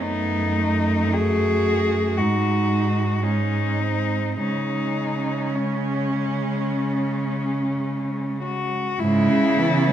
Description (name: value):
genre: classical, lyrical piece for cello ensemble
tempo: 49-58 BPM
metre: 4/4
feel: rubato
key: C# minor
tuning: A4 = 440 Hz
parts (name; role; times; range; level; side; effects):
- warm cello; melody; 0.0-9.9 s; C#4 to G#4; -25 LUFS; left 5 dB; none
- warm cello; second line; 0.0-9.9 s; G#3 to F#4; -29 LUFS; right 9 dB; none
- rich cello; accompaniment; 0.0-9.9 s; G#2 to A3; -26 LUFS; equal; none
- warm cello; bass; 0.0-9.9 s; F#2 to C#3; -25 LUFS; right 2 dB; none
room: wet recital hall reverb, RT60 1.6 s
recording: none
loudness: -20 LUFS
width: side -10 dB against mid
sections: 0.0-9.0 A section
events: none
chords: 0.0 D#dim/F#; 2.2 G#5; 4.4 C#5; 9.0 C#m/G#